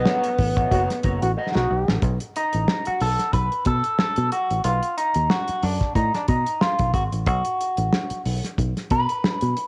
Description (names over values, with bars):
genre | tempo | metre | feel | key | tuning
funk | 92 BPM | 4/4 | swing 56% on 16ths | B mixolydian | A4 = 440 Hz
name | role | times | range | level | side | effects
growling tenor saxophone | melody | 0.0-1.4 s | B3 | -27 LUFS | equal | cassette tape
electric guitar through a small old amp | accompaniment | 0.0-9.7 s | A3 to D#5 | -26 LUFS | equal | wah, cassette tape
fingered electric bass | bass | 0.0-9.5 s | F#1 to B2 | -26 LUFS | equal | none
cloth-damped thuddy drum kit | drums | 0.1-9.7 s | hi-hat, kick drum, snare drum | -27 LUFS | equal | none
warm trombone | second line | 0.7-2.0 s | F#4 | -27 LUFS | equal | cassette tape
room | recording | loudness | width
light reverb, small room reverb | home recording on cassette | -22 LUFS | mono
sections
0.0-2.0 A section; 2.0-9.7 B section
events
drum fill 1.4-2.0; clean electric guitar solo 2.0-9.7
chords
0.0 B9; 2.0 B7